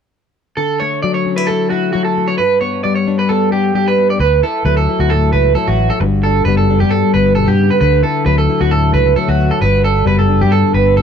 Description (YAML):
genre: highlife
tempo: 133 BPM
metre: 4/4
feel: swing 53% on 16ths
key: D major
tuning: A4 = 440 Hz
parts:
  - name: flamenco guitar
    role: accompaniment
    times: 0.6-11.0 s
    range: G2 to F#4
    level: -16 LUFS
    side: left 7 dB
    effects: none
  - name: electric guitar at the edge of break-up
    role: arpeggios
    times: 0.6-11.0 s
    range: F#4 to D5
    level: -15 LUFS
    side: right 5 dB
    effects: wide subtle chorus, tape echo
  - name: fingered electric bass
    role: bass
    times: 4.2-11.0 s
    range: F#1 to G2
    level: -15 LUFS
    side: right 1 dB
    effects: none
room: small room ambience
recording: dry, close 1970s-style studio recording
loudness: -11 LUFS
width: side -7 dB against mid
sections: 0.6-4.2 A section; 4.2-11.0 B section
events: none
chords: 0.6 Dadd9; 2.4 G; 4.2 Dadd9; 6.0 Gmaj7; 7.8 Dadd9; 9.6 Gmaj7